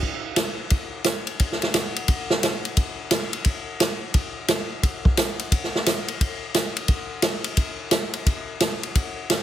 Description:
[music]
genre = jazz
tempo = 175 BPM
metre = 4/4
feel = swing 65% on 8ths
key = none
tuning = none
[part]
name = swinging big-band drum kit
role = drums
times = 0.0-9.4 s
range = hi-hat, kick drum, ride cymbal, snare drum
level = -21 LUFS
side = equal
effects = none
[sound]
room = light reverb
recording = heavily compressed radio sound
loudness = -21 LUFS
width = side -11 dB against mid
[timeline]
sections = 0.0-9.4 A section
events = none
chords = none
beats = | 0.03 0.37 0.72 1.06 | 1.40 1.75 2.09 2.43 | 2.78 3.12 3.46 3.81 | 4.15 4.49 4.84 5.18 | 5.52 5.87 6.21 6.55 | 6.90 7.24 7.58 7.93 | 8.27 8.61 8.96 9.30

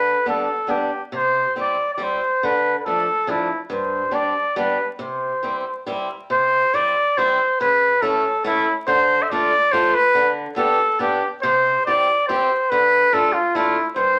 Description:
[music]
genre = alpine folk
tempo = 140 BPM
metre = 3/4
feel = straight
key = C major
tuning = A4 = 438 Hz
[part]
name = warm trumpet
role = melody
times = 0.0-14.2 s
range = E4 to E5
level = -20 LUFS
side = equal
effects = none
[part]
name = picked swing-style acoustic guitar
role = accompaniment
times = 0.0-14.2 s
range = G2 to G4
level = -27 LUFS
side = equal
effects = none
[sound]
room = wet studio reverb, RT60 0.7 s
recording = vinyl crackle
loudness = -19 LUFS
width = mono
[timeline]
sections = 0.0-6.3 A section; 6.3-14.2 A section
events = none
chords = 0.0 G/D; 1.1 C; 2.4 Dm; 3.7 Gsus4; 4.6 G; 5.0 C; 7.6 A/C#; 8.9 Dm; 10.1 G/D; 11.4 C; 12.7 Dm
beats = 0.26 0.69 | 1.12 1.55 1.99 | 2.42 2.84 3.27 | 3.69 4.12 4.55 | 4.99 5.42 5.86 | 6.30 6.74 7.17 | 7.59 8.02 8.44 | 8.87 9.29 9.72 | 10.14 10.57 11.00 | 11.43 11.87 12.29 | 12.72 13.14 13.56 | 13.98

